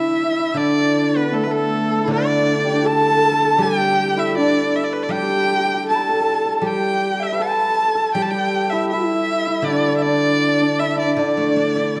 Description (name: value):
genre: chinese traditional, Chinese chamber ensemble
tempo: 79 BPM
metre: 2/4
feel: rubato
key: D zhi mode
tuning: A4 = 439 Hz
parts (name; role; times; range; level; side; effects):
- bright erhu; melody; 0.0-12.0 s; A4 to A5; -23 LUFS; equal; none
- dark horsehead fiddle; second line; 0.0-12.0 s; A3 to A4; -26 LUFS; equal; none
- hammered dulcimer; second line; 0.0-12.0 s; A3 to B4; -25 LUFS; equal; none
- large dizi; second line; 0.0-12.0 s; A4 to B5; -28 LUFS; equal; none
- steel-string zither; accompaniment; 0.0-12.0 s; D3 to A4; -26 LUFS; equal; none
room: wet recital hall reverb, RT60 1.6 s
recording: dark, warm production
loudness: -19 LUFS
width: mono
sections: 0.6-12.0 A section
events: none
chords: none